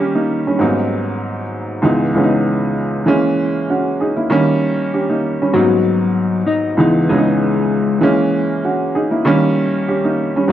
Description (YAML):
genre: hip hop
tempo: 97 BPM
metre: 4/4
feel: swing 57% on 16ths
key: unclear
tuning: A4 = 441 Hz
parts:
  - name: warm upright piano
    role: accompaniment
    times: 0.0-10.5 s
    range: C#2 to G#4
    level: -14 LUFS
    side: right 1 dB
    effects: high-pass filter, low-pass filter
  - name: mellow electric guitar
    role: melody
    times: 5.5-8.0 s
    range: E3 to D#5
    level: -17 LUFS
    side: left 4 dB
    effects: high-pass filter, low-pass filter, analog delay
room: moderate echo chamber reverb, RT60 1.7 s, small room reverb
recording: dark, warm production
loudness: -14 LUFS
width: side -11 dB against mid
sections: 0.0-10.5 A section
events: break 0.0-3.1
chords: 0.0 D#7; 0.6 G#m7; 1.8 C#m7; 3.1 A#m7b5; 4.3 D#7; 5.5 G#m7; 6.8 C#m7; 8.0 A#m7b5; 9.3 D#7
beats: | 0.60 1.22 1.83 2.45 | 3.07 3.69 4.31 4.93 | 5.54 6.16 6.78 7.40 | 8.02 8.64 9.26 9.88 | 10.49